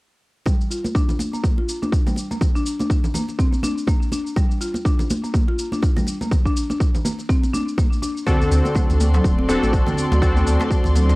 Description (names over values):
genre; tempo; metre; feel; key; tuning
afro house; 123 BPM; 4/4; swing 58% on 16ths; G minor; A4 = 438 Hz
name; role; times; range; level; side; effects
buzzing marimba with medium mallets; arpeggios; 0.5-11.0 s; D3 to F4; -26 LUFS; left 1 dB; sidechain pumping, low-pass filter, cassette tape, tape echo
electronic kick drum; drums; 0.5-10.8 s; none; -19 LUFS; equal; overdrive, cassette tape
shaker; drums; 0.5-11.2 s; none; -34 LUFS; left 1 dB; overdrive, cassette tape
congas; percussion; 0.5-11.2 s; none; -27 LUFS; right 1 dB; none
dark chamber string section; sustained chords; 8.3-11.2 s; F#4 to C6; -31 LUFS; equal; sidechain pumping, cassette tape
warm analog keys; stabs; 8.3-11.2 s; C4 to A4; -22 LUFS; left 1 dB; chorus, sidechain pumping, cassette tape, tape echo
djembe; percussion; 8.3-11.2 s; none; -29 LUFS; left 1 dB; none
warm sub bass; bass; 8.5-11.2 s; D1 to D2; -18 LUFS; equal; sidechain pumping
room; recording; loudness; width
light reverb; home recording on cassette; -18 LUFS; side -22 dB against mid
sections
0.5-11.2 A section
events
none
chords
0.5 Gm7 (rootless); 8.3 D7